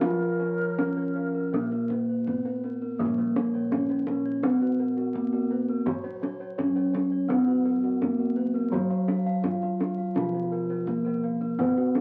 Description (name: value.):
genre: Javanese gamelan.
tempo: 84 BPM.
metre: 4/4.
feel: straight.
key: Bb pelog.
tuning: A4 = 440 Hz.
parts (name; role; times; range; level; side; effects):
gamelan-type bronze metallophone; melody; 0.0-12.0 s; Gb3 to F4; -31 LUFS; equal; none.
mellow bass bansuri; second line; 0.0-2.0 s; Bb4; -34 LUFS; equal; none.
gamelan-type bronze metallophone; accompaniment; 0.0-12.0 s; F3 to Cb4+35c; -31 LUFS; equal; none.
gamelan-type bossed gongs; arpeggios; 0.0-12.0 s; Gb4 to F5; -43 LUFS; equal; none.
gamelan-type bronze metallophone; arpeggios; 0.0-12.0 s; Gb4 to F5; -40 LUFS; equal; none.
gamelan-type bossed gongs; bass; 0.0-12.0 s; Bb1 to Cb5+35c; -40 LUFS; equal; none.
kendang; percussion; 0.0-12.0 s; none; -33 LUFS; equal; none.
room: moderate club reverb, RT60 0.7 s.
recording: very old 78 rpm record, vinyl crackle.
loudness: -27 LUFS.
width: mono.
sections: 0.0-3.0 A section; 3.0-12.0 B section.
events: none.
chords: none.